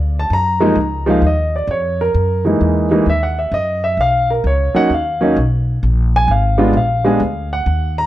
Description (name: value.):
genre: jazz piano trio.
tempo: 130 BPM.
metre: 4/4.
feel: swing 66% on 8ths.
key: unclear.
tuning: A4 = 439 Hz.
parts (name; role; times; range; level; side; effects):
upright bass; bass; 0.0-8.1 s; Ab1 to Gb2; -17 LUFS; equal; none.
warm grand piano; melody; 0.2-8.1 s; Fb3 to Bb5; -15 LUFS; equal; slapback echo.
room: small room reverb.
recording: dry, close 1970s-style studio recording.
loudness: -13 LUFS.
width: side -14 dB against mid.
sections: 0.0-8.1 A section.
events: none.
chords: 0.3 Gbmaj13; 2.1 Gb13; 4.0 Bmaj7; 5.8 Bb7.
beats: | 0.30 0.76 1.22 1.68 | 2.14 2.60 3.07 3.53 | 3.99 4.45 4.91 5.37 | 5.83 6.29 6.75 7.21 | 7.67.